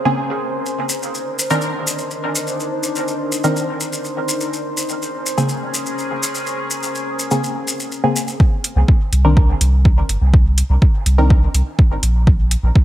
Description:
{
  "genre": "dub techno",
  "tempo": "124 BPM",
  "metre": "4/4",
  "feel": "straight",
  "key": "C phrygian",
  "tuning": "A4 = 440 Hz",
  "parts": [
    { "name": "deep dark ambient pad", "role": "sustained chords", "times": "0.0-8.4 s", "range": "Db4 to C5", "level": "-24 LUFS", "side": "left 1 dB", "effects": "chorus, built-in reverb, sidechain pumping" },
    { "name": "bubbling stepped-filter texture", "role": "texture", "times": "0.0-8.4 s", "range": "C5", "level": "-32 LUFS", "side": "right 1 dB", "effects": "none" },
    { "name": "filtered dub chord stab", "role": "stabs", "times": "0.1-11.3 s", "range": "Db3 to Bb4", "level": "-22 LUFS", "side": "equal", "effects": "chorus, phaser, sidechain pumping, dub echo" },
    { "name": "maracas", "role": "percussion", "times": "0.7-8.4 s", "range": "none", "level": "-23 LUFS", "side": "left 2 dB", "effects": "none" },
    { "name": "electronic kick drum", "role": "drums", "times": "8.4-12.8 s", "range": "none", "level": "-12 LUFS", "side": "equal", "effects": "overdrive" },
    { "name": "electronic hi-hat", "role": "drums", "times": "8.6-12.6 s", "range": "none", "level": "-21 LUFS", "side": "right 1 dB", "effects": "overdrive" },
    { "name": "round analog bass", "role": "bass", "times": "8.8-12.7 s", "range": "G1 to C2", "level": "-14 LUFS", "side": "equal", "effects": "sidechain pumping" }
  ],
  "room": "light reverb, digital ambience",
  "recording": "bright 1980s-style digital production",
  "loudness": "-15 LUFS",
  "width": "side -14 dB against mid",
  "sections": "0.0-8.4 A section; 8.4-12.8 B section",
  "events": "none",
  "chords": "0.0 Bbm9; 0.7 Cm9; 4.5 Bbm9; 8.4 C7(no3); 12.3 N.C.",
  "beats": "0.17 | 0.66 1.14 1.63 2.11 | 2.59 3.08 3.56 4.05 | 4.53 5.01 5.50 5.98 | 6.46 6.95 7.43 7.92 | 8.40 8.88 9.37 9.85 | 10.34 10.82 11.30 11.79 | 12.27 12.76"
}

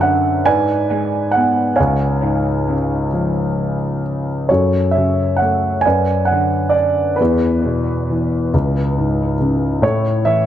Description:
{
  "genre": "classical, lyrical solo piano",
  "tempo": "45 BPM (dotted quarters)",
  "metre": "6/8",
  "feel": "rubato",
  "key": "unclear",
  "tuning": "A4 = 440 Hz",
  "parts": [
    { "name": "dark concert grand piano", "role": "solo", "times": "0.0-10.5 s", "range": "C#2 to G#5", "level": "-14 LUFS", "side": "equal", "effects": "dub echo" }
  ],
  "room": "moderate echo chamber reverb, RT60 1.5 s, studio ambience",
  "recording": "echo-heavy mix",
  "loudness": "-14 LUFS",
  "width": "side -11 dB against mid",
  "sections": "0.0-10.5 A section",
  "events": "none",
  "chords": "0.5 G#dim; 1.8 C#; 4.5 F#m; 5.9 Bm/F#; 7.2 E; 8.5 C#5; 9.8 A5",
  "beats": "0.46 | 1.78 3.12 | 4.49 5.85 | 7.20 8.53 | 9.83"
}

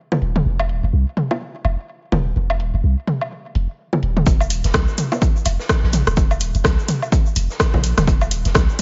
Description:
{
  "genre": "minimal techno",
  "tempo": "126 BPM",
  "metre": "4/4",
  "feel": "swing 59% on 16ths",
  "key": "unclear",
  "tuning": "A4 = 440 Hz",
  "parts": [
    { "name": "electronic toms, bongos and woodblock", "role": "percussion", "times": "0.1-8.8 s", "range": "none", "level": "-24 LUFS", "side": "equal", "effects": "overdrive, studio reverb, digital delay" },
    { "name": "punchy sub bass", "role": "bass", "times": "0.2-8.7 s", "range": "Eb1 to C2", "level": "-21 LUFS", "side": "equal", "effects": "sidechain pumping" },
    { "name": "punchy analog drum machine", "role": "drums", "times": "0.2-8.8 s", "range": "hi-hat, rim click", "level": "-25 LUFS", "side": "equal", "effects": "overdrive, low-pass filter on snare, studio reverb, low-pass filter on hats" },
    { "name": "electronic kick drum", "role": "drums", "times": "4.3-8.7 s", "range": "none", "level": "-20 LUFS", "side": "equal", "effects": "overdrive, studio reverb" },
    { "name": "raw garage drum kit", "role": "drums", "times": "4.3-8.8 s", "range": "hi-hat, shaker, snare drum", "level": "-35 LUFS", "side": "equal", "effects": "sidechain pumping on hats, high-pass filter on hats, studio reverb, high-pass filter on snare, sidechain pumping on perc, high-pass filter on perc, high-pass filter on room" },
    { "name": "tube shaker", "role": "percussion", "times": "4.3-8.8 s", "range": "none", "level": "-37 LUFS", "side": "equal", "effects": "none" }
  ],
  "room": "little or no reverb",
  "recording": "nothing above 7.6 kHz",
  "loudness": "-19 LUFS",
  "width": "mono",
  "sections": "0.0-4.3 A section; 4.3-8.8 B section",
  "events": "drop 4.3-8.8",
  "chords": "none",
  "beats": "| 0.46 0.93 1.41 1.88 | 2.36 2.84 3.31 3.79 | 4.26 4.74 5.22 5.69 | 6.17 6.65 7.12 7.60 | 8.07 8.55"
}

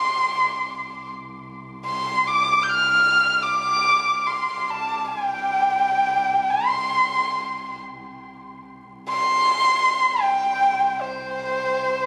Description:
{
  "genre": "mongolian traditional, Mongolian folk",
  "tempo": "free time",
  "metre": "none",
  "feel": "none",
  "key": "C zhi mode",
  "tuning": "A4 = 440 Hz",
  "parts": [
    { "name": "dark erhu", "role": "melody", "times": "0.0-12.1 s", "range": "C5 to G6", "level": "-22 LUFS", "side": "equal", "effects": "none" },
    { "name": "dark double bass", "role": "drone", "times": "0.0-12.1 s", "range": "C2", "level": "-44 LUFS", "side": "equal", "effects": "none" }
  ],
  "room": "moderate huge ambient reverb, RT60 7.4 s",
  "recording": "recorded on a phone in the room, club reverb",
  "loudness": "-21 LUFS",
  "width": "mono",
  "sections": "0.0-12.1 A section",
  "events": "none",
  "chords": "none",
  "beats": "free time"
}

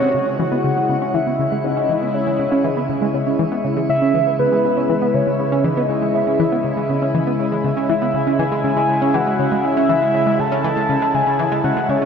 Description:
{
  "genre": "ambient, sequencer-driven space music",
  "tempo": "120 BPM",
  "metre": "4/4",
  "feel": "straight",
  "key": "C# minor",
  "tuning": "A4 = 440 Hz",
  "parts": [
    { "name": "soft octave-layered synth lead", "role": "melody", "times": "0.0-12.1 s", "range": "B4 to A5", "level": "-20 LUFS", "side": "equal", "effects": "chorus, phaser, shimmer reverb, analog delay" },
    { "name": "sweeping resonant pad", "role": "sustained chords", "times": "0.0-12.1 s", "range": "C3 to Gb4", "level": "-21 LUFS", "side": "left 1 dB", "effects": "chorus, shimmer reverb" },
    { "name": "tight sequenced synth", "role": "riff", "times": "0.0-12.1 s", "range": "C#3 to C#4", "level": "-21 LUFS", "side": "right 1 dB", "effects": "chorus, shimmer reverb, analog delay" }
  ],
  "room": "wet huge ambient reverb, RT60 8.3 s",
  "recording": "none",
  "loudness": "-16 LUFS",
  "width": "side -6 dB against mid",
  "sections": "0.1-12.1 A section",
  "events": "none",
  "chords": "0.1 C#m",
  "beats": "| 0.14 0.64 1.14 1.64 | 2.14 2.64 3.14 3.64 | 4.14 4.64 5.14 5.64 | 6.14 6.64 7.14 7.64 | 8.14 8.64 9.14 9.64 | 10.14 10.64 11.14 11.64"
}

